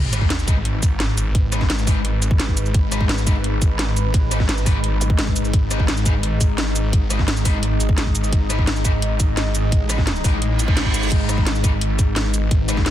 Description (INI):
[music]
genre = dark technical drum and bass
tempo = 172 BPM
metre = 4/4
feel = straight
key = G# phrygian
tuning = A4 = 440 Hz
[part]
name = deep dark ambient pad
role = sustained chords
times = 0.4-12.9 s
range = G#3 to D#5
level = -27 LUFS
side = left 2 dB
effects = chorus, built-in reverb, sidechain pumping
[part]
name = snarling distorted saw bass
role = bass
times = 0.0-12.9 s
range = G#1 to A1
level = -21 LUFS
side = equal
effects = distortion, sidechain pumping
[part]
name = sub drop, zap and reverse cymbal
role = sound effects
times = 0.0-1.3, 5.0-5.1, 10.5-11.1 s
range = none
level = -27 LUFS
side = right 1 dB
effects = none
[part]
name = fuzz guitar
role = stabs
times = 0.1-12.8 s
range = G#3 to B4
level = -29 LUFS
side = left 2 dB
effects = distortion, dub echo
[part]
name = drum and bass drum kit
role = drums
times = 0.1-12.9 s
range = cabasa, crash cymbal, hi-hat, rim click, snare drum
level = -24 LUFS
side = equal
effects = none
[part]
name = electronic kick drum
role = drums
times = 0.2-12.8 s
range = none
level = -18 LUFS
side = equal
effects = none
[sound]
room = digital ambience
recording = dense, heavily limited modern master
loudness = -17 LUFS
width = side -12 dB against mid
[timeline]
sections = 0.0-12.9 A section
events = impact 0.0-1.3; reverse cymbal 10.5-11.1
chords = 0.0 G#m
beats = 0.30 0.65 1.00 | 1.35 1.70 2.05 2.40 | 2.74 3.09 3.44 3.79 | 4.14 4.49 4.84 5.19 | 5.54 5.88 6.23 6.58 | 6.93 7.28 7.63 7.98 | 8.33 8.68 9.02 9.37 | 9.72 10.07 10.42 10.77 | 11.12 11.46 11.81 12.16 | 12.51 12.86